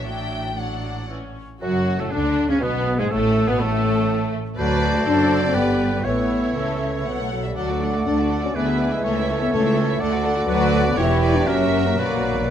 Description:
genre	quick classical-period movement for symphony orchestra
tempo	112-125 BPM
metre	3/4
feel	rubato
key	D major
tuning	A4 = 440 Hz
part	rich studio violin section	melody	0.0-12.5 s	G#3 to G5	-31 LUFS	left 2 dB	none
part	warm studio violin section	second line	0.0-12.5 s	G#3 to F#5	-32 LUFS	left 3 dB	none
part	rich studio viola section	accompaniment	0.0-12.5 s	E3 to B4	-30 LUFS	right 1 dB	none
part	rich studio cello section	bass	0.0-12.5 s	C#2 to D3	-27 LUFS	right 4 dB	none
part	rich studio double bass section	bass	0.0-12.5 s	E1 to D2	-27 LUFS	right 2 dB	none
part	clear oboe	second line	1.6-12.5 s	B3 to D5	-30 LUFS	right 1 dB	none
part	mellow hollow concert flute	second line	1.6-12.5 s	C#4 to A5	-29 LUFS	left 1 dB	none
part	warm clarinet	second line	1.6-12.2 s	F#3 to B4	-30 LUFS	equal	none
part	mellow bassoon	accompaniment	1.6-12.5 s	F#2 to F#3	-28 LUFS	right 1 dB	none
part	mellow French horn section	sustained chords	1.6-12.5 s	F#3 to E4	-24 LUFS	left 4 dB	none
part	timpani	percussion	12.0-12.5 s	B2	-32 LUFS	left 2 dB	none
room	light reverb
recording	close, detailed microphones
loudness	-18 LUFS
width	side -9 dB against mid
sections	0.0-1.6 A section; 1.6-12.5 B section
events	timpani fill 12.0-12.5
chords	0.1 D/A; 1.1 A; 1.6 D/F#; 2.6 G#m/B; 3.1 Asus2; 4.1 N.C.; 4.6 D7; 5.6 G; 6.1 A; 7.6 D; 8.6 E7/D; 9.0 A/C#; 10.0 D; 10.5 Bm/D; 11.0 C#dim/E; 11.5 F#7; 12.0 Bm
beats	| 0.06 0.58 1.10 | 1.62 2.13 2.62 | 3.12 3.61 4.10 | 4.58 5.07 5.56 | 6.06 6.56 7.06 | 7.56 8.06 8.55 | 9.04 9.53 10.01 | 10.49 10.98 11.48 | 12.00

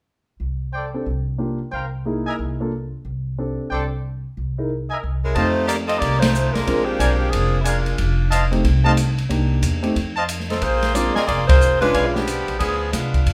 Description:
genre	jazz, big band swing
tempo	182 BPM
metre	4/4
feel	swing 63% on 8ths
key	unclear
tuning	A4 = 439 Hz
part	upright bass	bass	0.4-13.3 s	F1 to C3	-25 LUFS	equal	none
part	warm trumpet section	stabs	0.7-12.1 s	A4 to A5	-26 LUFS	equal	none
part	warm concert grand piano	accompaniment	0.9-12.2 s	Ab3 to Bb4	-28 LUFS	equal	none
part	clear saxophone section	melody	5.2-13.3 s	F3 to Eb5	-23 LUFS	equal	none
part	open jazz drum kit	drums	5.4-13.3 s	hi-hat, kick drum, ride cymbal, snare drum	-26 LUFS	equal	none
room	moderate large studio reverb, RT60 0.8 s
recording	none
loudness	-21 LUFS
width	mono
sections	0.1-5.4 A section; 5.4-13.3 B section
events	band accent 6.2, 11.4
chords	0.1 N.C.; 0.7 D7sus4; 1.4 C7sus4; 2.1 C7alt; 2.7 N.C.; 3.4 D7sus4; 4.0 C7alt; 5.4 F7; 6.7 Bb7; 8.0 F7; 9.3 Cm7; 10.0 F7; 10.6 Bb7; 11.9 Bdim7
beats	| 0.07 0.40 0.73 1.06 | 1.40 1.73 2.06 2.38 | 2.71 3.04 3.38 3.71 | 4.03 4.36 4.69 5.02 | 5.35 5.68 6.01 6.34 | 6.67 7.00 7.32 7.65 | 7.98 8.31 8.64 8.97 | 9.30 9.63 9.96 10.29 | 10.62 10.95 11.28 11.61 | 11.94 12.27 12.60 12.93 | 13.26

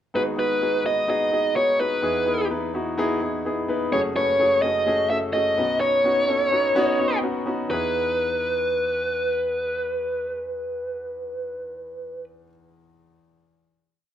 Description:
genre	pop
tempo	127 BPM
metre	4/4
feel	straight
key	E major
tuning	A4 = 440 Hz
part	clear baby grand piano	accompaniment	0.1-14.0 s	F#1 to B4	-26 LUFS	left 1 dB	none
part	bluesy overdriven lead guitar	melody	0.2-12.2 s	B4 to E5	-22 LUFS	equal	distortion
room	wet small room reverb, RT60 0.5 s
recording	rough home demo mix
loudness	-21 LUFS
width	side -10 dB against mid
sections	0.1-7.7 verse; 7.7-11.5 final chord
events	none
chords	0.1 G#m7; 2.0 Emaj7; 3.9 F#madd9; 5.6 Badd9; 7.7 Emaj7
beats	| 0.14 0.62 1.09 1.56 | 2.03 2.51 2.98 3.45 | 3.92 4.40 4.87 5.34 | 5.81 6.29 6.76 7.23 | 7.70 8.18 8.65 9.12 | 9.59 10.06 10.54 11.01

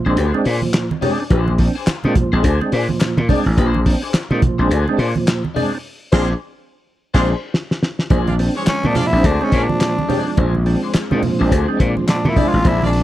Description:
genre	funk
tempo	106 BPM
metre	4/4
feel	swing 60% on 16ths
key	Bb mixolydian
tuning	A4 = 440 Hz
part	clean electric guitar	accompaniment	0.0-13.0 s	D4 to D5	-24 LUFS	left 6 dB	wah, vibrato effect
part	percussive tonewheel organ	stabs	0.0-12.6 s	Bb2 to D4	-22 LUFS	right 3 dB	overdrive, chorus vibrato, slow rotary speaker
part	gritty slap bass	bass	0.1-13.0 s	A1 to Bb2	-17 LUFS	equal	overdrive
part	cloth-damped thuddy drum kit	drums	0.2-13.0 s	crash cymbal, handclaps, hi-hat, kick drum, snare drum	-19 LUFS	equal	none
part	congas	percussion	0.2-12.9 s	none	-25 LUFS	right 4 dB	none
part	group handclap	percussion	0.7-12.2 s	none	-34 LUFS	left 4 dB	none
part	clear horn section	second line	6.1-12.9 s	Ab3 to D5	-25 LUFS	equal	none
part	string machine, full ensemble	sustained chords	8.1-13.0 s	F3 to D4	-25 LUFS	left 1 dB	none
part	growling tenor saxophone	melody	8.7-13.0 s	Db4 to F4	-20 LUFS	equal	none
room	small room ambience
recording	dry, close 1970s-style studio recording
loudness	-15 LUFS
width	side -14 dB against mid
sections	0.0-8.1 A section; 8.1-13.0 B section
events	drum fill 5.8-8.1; band accent 5.8-8.1; tenor saxophone solo 8.1-13.0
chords	0.0 Bb9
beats	0.18 0.74 | 1.31 1.88 2.44 3.01 | 3.58 4.14 4.71 5.28 | 5.84 6.41 6.98 7.54 | 8.11 8.68 9.24 9.81 | 10.38 10.95 11.52 12.08 | 12.65

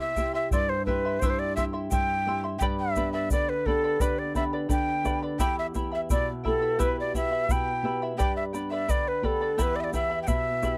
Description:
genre	andean folk, Andean ensemble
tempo	86 BPM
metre	2/4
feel	straight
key	E minor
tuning	A4 = 440 Hz
part	breathy quena	melody	0.0-10.8 s	A4 to G5	-30 LUFS	equal	none
part	charango	accompaniment	0.0-10.8 s	E4 to C6	-36 LUFS	equal	none
part	flamenco guitar	accompaniment	0.0-10.8 s	E2 to G4	-35 LUFS	equal	none
part	bombo	percussion	0.2-10.8 s	none	-32 LUFS	equal	none
part	egg shaker	percussion	0.2-10.8 s	none	-45 LUFS	equal	none
room	light reverb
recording	dry, close 1970s-style studio recording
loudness	-27 LUFS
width	mono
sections	0.0-10.8 A section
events	none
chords	0.0 C; 2.6 G; 5.4 Em; 8.2 G; 9.6 Em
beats	0.52 | 1.22 1.92 | 2.61 3.31 | 4.01 4.71 | 5.40 6.10 | 6.80 7.49 | 8.19 8.89 | 9.58 10.28

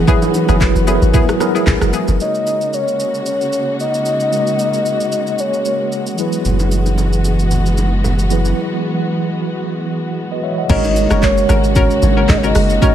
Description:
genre	amapiano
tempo	113 BPM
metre	4/4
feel	swing 55% on 16ths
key	G# minor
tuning	A4 = 441 Hz
part	soft octave-layered synth lead	melody	0.0-6.2, 10.7-12.9 s	G#4 to D#5	-19 LUFS	left 1 dB	chorus, tremolo, ping-pong delay
part	mellow tine electric piano	accompaniment	0.0-12.9 s	F#3 to F#5	-20 LUFS	right 2 dB	medium stereo tremolo
part	dark studio string section	sustained chords	0.0-12.9 s	C#3 to F#4	-21 LUFS	equal	sidechain pumping
part	hollow square pluck	stabs	0.0-2.2, 10.7-12.9 s	B3 to A#4	-22 LUFS	left 6 dB	chorus, ping-pong delay
part	deep log drum bass	bass	0.0-2.2, 10.7-12.8 s	F#1 to G#1	-16 LUFS	equal	none
part	afro-pop drum kit	drums	0.1-12.9 s	crash cymbal, handclaps, hi-hat, kick drum, rim click, shaker	-19 LUFS	equal	none
part	congas and bongos	percussion	0.1-2.2, 6.5-12.9 s	none	-26 LUFS	right 4 dB	none
part	sub bass with octave	bass	6.5-8.5 s	F#1	-16 LUFS	equal	none
room	little or no reverb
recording	none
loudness	-13 LUFS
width	side -10 dB against mid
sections	0.0-2.2 A section; 2.2-10.7 B section; 10.7-12.9 A section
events	drop 0.0-2.2, 10.7-12.9; break 8.6-10.7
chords	0.0 F#9sus4; 2.2 G#9sus4; 6.2 F#9sus4; 10.7 G#9sus4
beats	| 0.08 0.61 1.14 1.67 | 2.20 2.73 3.26 3.79 | 4.33 4.86 5.39 5.92 | 6.45 6.98 7.51 8.04 | 8.57 9.10 9.63 10.16 | 10.70 11.23 11.76 12.29 | 12.82

